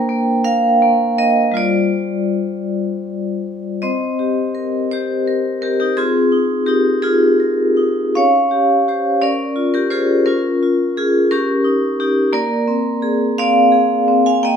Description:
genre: classical, contemporary piece for solo vibraphone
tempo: 52-59 BPM (dotted quarters)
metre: 6/8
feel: rubato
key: unclear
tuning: A4 = 440 Hz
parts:
  - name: vibraphone with medium hard mallets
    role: solo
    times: 0.0-14.6 s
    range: G3 to Ab5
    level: -14 LUFS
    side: equal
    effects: none
room: wet stone room reverb, RT60 1.3 s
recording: none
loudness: -14 LUFS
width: side -7 dB against mid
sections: 0.0-3.8 A section; 3.8-14.6 B section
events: none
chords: 0.0 Bb69; 1.6 G7sus4; 3.8 Cm7; 6.0 Bb9sus4/C; 8.1 Dbmaj7#11; 9.2 Db6; 11.3 Eb7/Db; 12.3 Bb9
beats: 0.45 | 1.57 2.70 | 3.83 4.91 | 5.98 7.04 | 8.15 9.21 | 10.25 11.30 | 12.32 13.36 | 14.42

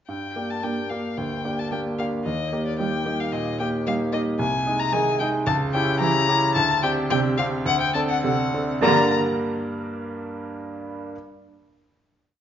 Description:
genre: quick classical-period movement for piano trio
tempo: 101-114 BPM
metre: 4/4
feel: straight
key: G minor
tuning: A4 = 440 Hz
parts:
  - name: rich violin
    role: melody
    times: 0.1-9.1 s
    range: D5 to A#5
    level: -25 LUFS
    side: left 5 dB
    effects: none
  - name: bright concert grand piano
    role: accompaniment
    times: 0.1-11.2 s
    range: C2 to D5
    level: -24 LUFS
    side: right 1 dB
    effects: none
  - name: rich cello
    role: second line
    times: 0.6-9.1 s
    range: C3 to Bb3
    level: -28 LUFS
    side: right 6 dB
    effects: none
room: wet recital hall reverb, RT60 1.4 s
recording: nothing above 7.4 kHz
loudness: -21 LUFS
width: side -9 dB against mid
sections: 0.1-8.8 A section; 8.8-11.1 final chord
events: slowing down 3.3-8.8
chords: 0.1 Gm; 2.3 Eb; 4.4 Ab/C; 5.5 C#dim7; 6.6 D7sus4; 7.7 D7; 8.8 Gm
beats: | 0.08 0.63 1.18 1.71 | 2.26 2.79 3.33 3.87 | 4.40 4.93 5.47 6.01 | 6.55 7.11 7.67 8.24 | 8.83 9.40 9.98 10.55

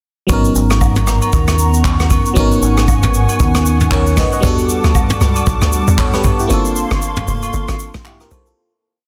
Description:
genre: amapiano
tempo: 116 BPM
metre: 4/4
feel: swing 58% on 16ths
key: unclear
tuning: A4 = 440 Hz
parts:
  - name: FM electric piano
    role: accompaniment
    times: 0.3-8.7 s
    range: F#3 to F#5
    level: -22 LUFS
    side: equal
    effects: chorus, phaser
  - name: hollow soft pad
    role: sustained chords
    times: 0.3-8.6 s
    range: G3 to D6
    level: -24 LUFS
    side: equal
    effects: ensemble chorus
  - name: deep dub fingered electric bass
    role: bass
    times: 0.3-4.2 s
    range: G#1 to D#2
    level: -18 LUFS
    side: equal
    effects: none
  - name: soft brush drum kit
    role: drums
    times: 0.3-8.6 s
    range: handclaps, kick drum, rim click, shaker, snare drum, toms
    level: -19 LUFS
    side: equal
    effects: soft clipping on snare
  - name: agogo bells and woodblock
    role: percussion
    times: 0.3-8.5 s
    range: none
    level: -27 LUFS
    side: equal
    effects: none
  - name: tight log drum bass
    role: bass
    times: 4.4-8.5 s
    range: F1 to G2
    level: -19 LUFS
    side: equal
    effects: none
room: light reverb, small room ambience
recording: dense, heavily limited modern master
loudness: -14 LUFS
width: mono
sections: 0.3-8.6 groove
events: break 6.5-8.6; fade-out 6.5-8.6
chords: 0.3 G#m11; 4.4 Em11; 6.5 Gm11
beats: | 0.29 0.81 1.33 1.85 | 2.36 2.88 3.40 3.92 | 4.43 4.95 5.47 5.99 | 6.50 7.02 7.54 8.05

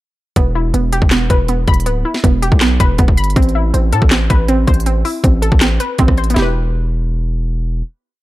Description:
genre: hip hop, trap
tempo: 160 BPM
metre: 4/4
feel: half-time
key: E minor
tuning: A4 = 439 Hz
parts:
  - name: warbly dusty pluck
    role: accompaniment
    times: 0.4-8.2 s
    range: B3 to B5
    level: -18 LUFS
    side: equal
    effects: chorus
  - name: distorted 808-style bass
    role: bass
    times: 0.4-7.8 s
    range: D1 to A2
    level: -15 LUFS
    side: equal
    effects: distortion
  - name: trap drum kit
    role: drums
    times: 0.4-6.4 s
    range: handclaps, hi-hat, kick drum, rim click, snare drum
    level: -14 LUFS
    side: equal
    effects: none
room: digital ambience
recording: dark, warm production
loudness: -12 LUFS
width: side -17 dB against mid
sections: 0.4-6.4 hook; 6.4-8.2 final chord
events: none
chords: 0.4 Em; 3.4 Amadd9; 6.4 Em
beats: | 0.36 0.74 1.11 1.49 | 1.86 2.24 2.61 2.99 | 3.36 3.74 4.11 4.49 | 4.86 5.24 5.61 5.99 | 6.36 6.74 7.11 7.49 | 7.86

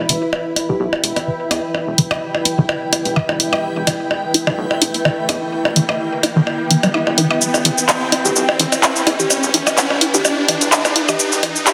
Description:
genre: minimal techno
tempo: 127 BPM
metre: 4/4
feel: swing 54% on 16ths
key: E minor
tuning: A4 = 440 Hz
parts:
  - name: rubbery square bass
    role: bass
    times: 0.0-11.5 s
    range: E1 to E2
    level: -29 LUFS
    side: equal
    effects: high-pass filter
  - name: riser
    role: sound effects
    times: 2.2-11.7 s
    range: none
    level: -26 LUFS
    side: equal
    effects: none
  - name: granular cloud pad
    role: texture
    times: 0.0-11.7 s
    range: E4 to G5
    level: -25 LUFS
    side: equal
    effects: built-in reverb
  - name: resonant blip pluck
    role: riff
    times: 0.1-11.5 s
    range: E3 to E4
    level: -22 LUFS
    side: equal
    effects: phaser, delay
  - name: house drum kit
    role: drums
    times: 0.1-11.7 s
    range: handclaps, hi-hat, shaker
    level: -19 LUFS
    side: equal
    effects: studio reverb
  - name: percussion blips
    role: percussion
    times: 0.3-11.7 s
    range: none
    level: -23 LUFS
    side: equal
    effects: studio reverb, tape echo
  - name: glassy wavetable pluck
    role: melody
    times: 0.7-0.9, 8.2-11.7 s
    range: G4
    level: -27 LUFS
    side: equal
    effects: chorus, tape echo
room: moderate lush hall reverb, RT60 2.4 s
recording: dense, heavily limited modern master, high-pass filter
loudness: -17 LUFS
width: mono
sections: 0.0-11.7 A section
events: build-up 0.0-11.7; filter sweep on synth arpeggio sound 0.0-11.7; filter sweep on synth pluck 0.0-11.7; riser 2.2-11.7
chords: 0.0 Em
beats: 0.33 0.80 1.27 | 1.75 2.22 2.69 3.16 | 3.63 4.11 4.58 5.05 | 5.53 6.00 6.47 6.94 | 7.41 7.89 8.36 8.83 | 9.30 9.78 10.25 10.72 | 11.19 11.67

